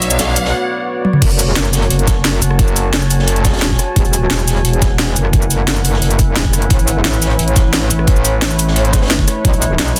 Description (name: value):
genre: dark technical drum and bass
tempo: 175 BPM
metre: 4/4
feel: straight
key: F# minor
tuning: A4 = 435 Hz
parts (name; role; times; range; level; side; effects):
- deep dark ambient pad; sustained chords; 0.0-10.0 s; A3 to A5; -24 LUFS; equal; chorus, built-in reverb, sidechain pumping
- metallic wobble bass; bass; 0.0-10.0 s; E1 to B1; -18 LUFS; equal; chorus, overdrive
- crunchy breakbeat drum kit; drums; 0.0-10.0 s; hi-hat, snare drum; -28 LUFS; equal; high-pass filter on hats, high-pass filter on snare, high-pass filter on room
- drum and bass drum kit; drums; 0.0-10.0 s; crash cymbal, hi-hat, rim click, shaker, snare drum, toms; -19 LUFS; equal; overdrive
- riser; sound effects; 0.0-0.5 s; none; -23 LUFS; equal; none
- electronic kick drum; drums; 1.2-9.5 s; none; -16 LUFS; equal; overdrive
room: light reverb, digital ambience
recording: dense, heavily limited modern master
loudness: -14 LUFS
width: mono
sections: 0.0-1.2 A section; 1.2-10.0 B section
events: build-up 0.0-1.2; riser 0.0-0.5; drum fill 1.0; drop 1.2-10.0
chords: 0.0 Bm; 1.2 F#m; 4.0 E; 6.7 Aadd9; 9.4 Bm